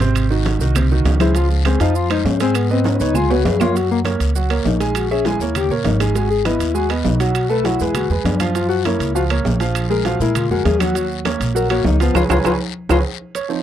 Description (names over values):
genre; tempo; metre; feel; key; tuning
Afro-Cuban jazz; 200 BPM; 4/4; straight; Db major, F# major from 3.8 s; A4 = 440 Hz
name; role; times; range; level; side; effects
warm concert grand piano; accompaniment; 0.0-13.6 s; C3 to Ab5; -21 LUFS; right 7 dB; none
upright bass; bass; 0.0-13.0 s; Ab1 to A#2; -19 LUFS; equal; none
congas; percussion; 0.0-13.6 s; none; -25 LUFS; left 2 dB; none
guiro; percussion; 0.0-13.6 s; none; -35 LUFS; left 17 dB; none
maracas; percussion; 0.0-13.6 s; none; -35 LUFS; right 16 dB; none
timbales; percussion; 0.0-13.5 s; none; -26 LUFS; right 6 dB; none
claves; percussion; 0.2-13.0 s; none; -29 LUFS; right 17 dB; none
breathy tenor saxophone; second line; 1.2-13.0 s; Ab3 to A#4; -20 LUFS; left 9 dB; none
room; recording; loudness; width
little or no reverb; dry, close 1970s-style studio recording; -15 LUFS; side -10 dB against mid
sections
0.0-3.8 A section; 3.8-13.4 A section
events
tenor saxophone solo 0.0-13.4; drum fill 2.9-3.8, 12.8-13.4; band accent 12.2-13.4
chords
0.2 Ab7; 1.4 Dbmaj7; 2.6 Abm; 3.2 Db5; 3.8 F#69; 5.0 A#m7b5; 5.6 D#5; 6.2 G#m7; 7.4 B5; 8.0 E9; 8.6 F#maj7; 9.8 A#5; 11.0 D#m9; 12.2 C#7(no3)